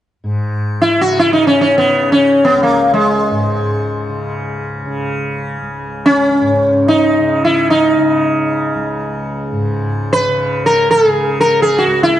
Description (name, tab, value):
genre	indian classical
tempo	free time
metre	none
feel	none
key	C# raga kafi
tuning	A4 = 442 Hz
part	tanpura	drone	0.2-12.2 s	C#2 to C#3	-20 LUFS	equal	none
part	sitar	melody	0.8-12.2 s	G#3 to B4	-12 LUFS	equal	none
room	moderate recital hall reverb, RT60 1.6 s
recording	dark, warm production, nothing above 11.0 kHz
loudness	-12 LUFS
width	side -12 dB against mid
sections	0.2-12.2 A section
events	none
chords	none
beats	free time